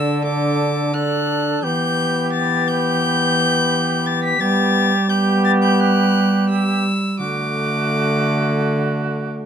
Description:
classical, renaissance-style consort dance; 86 BPM; 4/4; straight; D major; A4 = 440 Hz
rich violin; melody; 0.0-9.3 s; D6 to B6; -22 LUFS; left 3 dB
mellow cor anglais; second line; 0.0-9.5 s; F#4 to A4; -23 LUFS; right 6 dB
warm trombone; accompaniment; 0.0-9.5 s; A3 to D4; -22 LUFS; left 4 dB
dark cello; bass; 0.0-9.5 s; D3 to G3; -20 LUFS; right 1 dB
light reverb; close, detailed microphones; -16 LUFS; side -8 dB against mid
0.0-9.5 A section
0.0 D; 1.6 Em; 4.4 G; 7.2 D

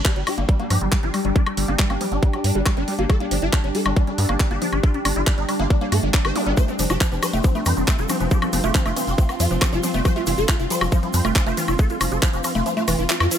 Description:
psychedelic trance; 138 BPM; 4/4; straight; A4 = 439 Hz
pulsing gated texture; sustained chords; 0.0-13.4 s; G3 to D4; -30 LUFS; equal; chorus, built-in reverb, sidechain pumping
warbly tape-like pad; texture; 0.0-13.4 s; C4 to C6; -31 LUFS; equal; chorus, built-in reverb, sidechain pumping
swarming rave lead; melody; 0.1-13.4 s; G3 to C5; -27 LUFS; equal; chorus, phaser, sidechain pumping, tape echo
woody wave-folded pluck; riff; 0.1-13.4 s; E3 to G4; -28 LUFS; moving between left 7 dB and right 2 dB; chorus, auto-pan, sidechain pumping, tape echo
electronic kick drum; drums; 0.1-12.3 s; -19 LUFS; equal
garage drum kit; drums; 0.1-13.4 s; handclaps, hi-hat, ride cymbal, woodblock; -26 LUFS; left 1 dB
round analog bass; bass; 0.2-13.3 s; F1 to G2; -24 LUFS; equal
zap; sound effects; 6.4-6.5 s; -33 LUFS; right 1 dB
egg shaker; percussion; 6.6-13.4 s; -33 LUFS; left 3 dB
vowel-sweep wobble bass; second line; 8.1-13.4 s; F3 to C4; -35 LUFS; right 4 dB
digital ambience; -18 LUFS; side -9 dB against mid
0.0-13.4 A section
kick drops out 12.7-13.4
0.0 G5; 6.6 F5

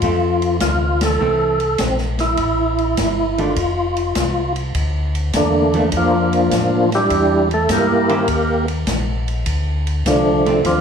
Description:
soul jazz organ trio; 102 BPM; 4/4; swing 69% on 8ths; F major, Bb major from 4.7 s; A4 = 440 Hz
percussive tonewheel organ; melody; 0.0-10.8 s; D3 to Bb4; -17 LUFS; equal; slow rotary speaker, overdrive, chorus vibrato, slapback echo
archtop guitar, miked and amplified; accompaniment; 0.0-10.6 s; D3 to C5; -24 LUFS; right 5 dB; slapback echo
mellow tonewheel organ; bass; 0.0-10.8 s; F1 to A2; -22 LUFS; left 1 dB; overdrive, chorus vibrato, slow rotary speaker
open jazz drum kit; drums; 0.0-10.8 s; hi-hat, kick drum, ride cymbal, snare drum; -24 LUFS; equal
little or no reverb; live gig heard through the venue's PA, club reverb; -15 LUFS; side -7 dB against mid
0.0-4.7 A section; 4.7-10.8 B section
band accent 0.9; tonewheel organ solo 4.7-10.8
0.0 Fmaj7; 3.6 F5; 4.7 Bbmaj7; 7.1 Em7b5; 8.3 Eb; 9.5 Dm7

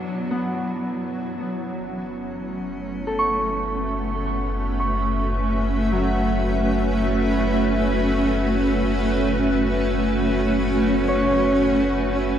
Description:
ambient; free time; F# minor; A4 = 440 Hz
rich cello; melody; 0.0-12.4 s; F#3 to C#4; -30 LUFS; equal; diffuse ambient delay
granular cloud pad; sustained chords; 0.0-12.4 s; F#3 to A5; -22 LUFS; right 1 dB; built-in reverb
Celtic harp; arpeggios; 0.3-12.4 s; F#3 to C#6; -27 LUFS; equal; diffuse ambient delay
warm sub bass; bass; 1.8-12.4 s; F#1; -27 LUFS; equal
moderate huge ambient reverb, RT60 8.9 s; dark, warm production; -20 LUFS; side -9 dB against mid
0.0-1.8 A section; 1.8-12.4 B section
fade-in on cello 1.8-12.4; fade-out on sub bass 1.8-12.4
0.0 F#m7

